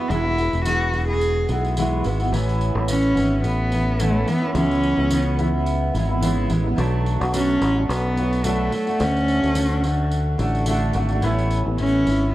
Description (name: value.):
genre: acoustic pop.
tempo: 108 BPM.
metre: 4/4.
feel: swing 55% on 16ths.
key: A major.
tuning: A4 = 441 Hz.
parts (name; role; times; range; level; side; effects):
rich cello; melody; 0.0-12.3 s; A3 to G#4; -22 LUFS; equal; none.
fingerpicked steel-string acoustic guitar; accompaniment; 0.0-12.3 s; E2 to F#4; -24 LUFS; equal; double-tracked left and right.
fingered electric bass; bass; 0.1-12.3 s; E1 to D2; -22 LUFS; equal; none.
tambourine; percussion; 0.1-12.2 s; none; -38 LUFS; right 3 dB; none.
room: light reverb, small room ambience.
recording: worn, warbling old tape, cassette tape, warbly pitch drift.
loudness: -18 LUFS.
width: side -15 dB against mid.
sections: 0.0-2.3 A section; 2.3-12.3 B section.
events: none.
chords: 0.0 Eadd9; 2.3 Aadd9; 6.8 Bm7; 9.0 D; 11.2 Aadd9.